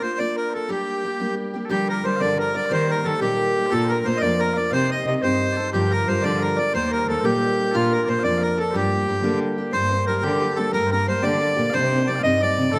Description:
celtic folk, Celtic jig; 120 BPM (dotted quarters); 6/8; straight; G minor; A4 = 440 Hz
accordion; melody; 0.0-12.8 s; F4 to Eb5; -25 LUFS; equal
mellow small bagpipes; second line; 0.0-12.8 s; F4 to G5; -35 LUFS; equal
picked steel-string acoustic guitar; accompaniment; 0.0-12.8 s; D2 to C5; -28 LUFS; equal
concert harp; second line; 1.7-12.8 s; F4 to Eb5; -32 LUFS; equal
dark cello; bass; 1.7-12.8 s; Eb2 to G3; -28 LUFS; equal
moderate recital hall reverb, RT60 1.4 s; -22 LUFS; mono
0.0-1.7 A section; 1.7-9.7 A section; 9.7-12.8 B section
0.0 Bb; 0.7 Gm; 1.7 Gm7; 2.7 Eb; 3.7 Bb; 4.7 Cm; 5.7 Gm7; 6.7 Eb; 7.7 Bb; 8.7 Gm; 11.7 Cmadd9

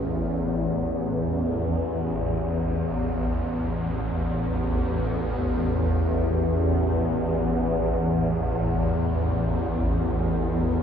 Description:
world meditative, free-time meditation music; free time; A4 = 440 Hz
swarming drone; solo; 0.0-10.8 s; A1 to E2; -23 LUFS; equal; built-in reverb, tape echo
wet lush hall reverb, RT60 2.5 s; dark, warm production; -23 LUFS; side -8 dB against mid
0.0-10.8 A section

